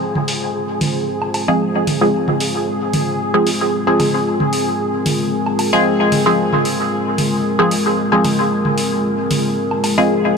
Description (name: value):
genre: dub techno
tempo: 113 BPM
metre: 4/4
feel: straight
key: F minor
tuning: A4 = 440 Hz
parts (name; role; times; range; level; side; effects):
- dark analog pad; sustained chords; 0.0-10.4 s; Ab3 to C5; -20 LUFS; left 1 dB; chorus, vintage 12-bit sampler grit
- bubbling stepped-filter texture; texture; 0.0-10.4 s; Ab4; -25 LUFS; right 1 dB; chorus, built-in reverb
- electronic toms and woodblock; percussion; 0.2-9.9 s; none; -24 LUFS; right 2 dB; dub echo
- electronic hi-hat; drums; 0.3-9.9 s; none; -26 LUFS; left 1 dB; low-pass filter on hats
- filtered dub chord stab; stabs; 1.5-10.4 s; F3 to Ab4; -17 LUFS; equal; chorus, phaser, dub echo
room: moderate huge ambient reverb, RT60 6.2 s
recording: none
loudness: -14 LUFS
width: side -5 dB against mid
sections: 0.0-10.4 A section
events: none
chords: 0.0 Fm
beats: | 0.01 0.55 1.08 1.61 | 2.14 2.67 3.20 3.73 | 4.26 4.79 5.33 5.86 | 6.39 6.92 7.45 7.98 | 8.51 9.04 9.57 10.10